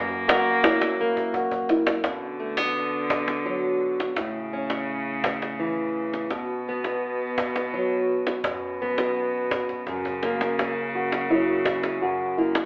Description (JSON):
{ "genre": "acoustic folk duo or small band", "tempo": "84 BPM", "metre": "3/4", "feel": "straight", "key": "B minor", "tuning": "A4 = 440 Hz", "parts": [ { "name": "warm cello", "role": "second line", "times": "0.0-12.7 s", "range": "B2 to A#3", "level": "-29 LUFS", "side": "equal", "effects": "none" }, { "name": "fingerpicked plugged-in steel-string acoustic guitar", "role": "accompaniment", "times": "0.0-12.7 s", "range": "F#2 to A#4", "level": "-26 LUFS", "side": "equal", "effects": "none" }, { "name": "cajon", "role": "percussion", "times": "0.1-12.7 s", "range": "none", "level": "-26 LUFS", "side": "equal", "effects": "none" }, { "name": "dark upright piano", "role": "arpeggios", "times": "0.3-2.0, 10.9-12.7 s", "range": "E4 to F#4", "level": "-24 LUFS", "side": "equal", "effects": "none" } ], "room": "wet studio reverb, RT60 0.8 s", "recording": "band playing live in one room, telephone sound", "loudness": "-22 LUFS", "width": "side -30 dB against mid", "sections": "0.0-2.0 A section; 2.0-12.7 B section", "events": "cello solo 0.0-2.0; drum fill 1.2-2.0, 9.7-10.6", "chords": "0.0 F#; 2.0 Bm; 4.2 A; 6.3 B5; 8.4 F#sus4; 9.9 F#", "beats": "0.63 1.34 | 2.04 2.75 3.46 | 4.17 4.88 5.59 | 6.30 7.02 7.73 | 8.45 9.16 9.87 | 10.59 11.30 12.02" }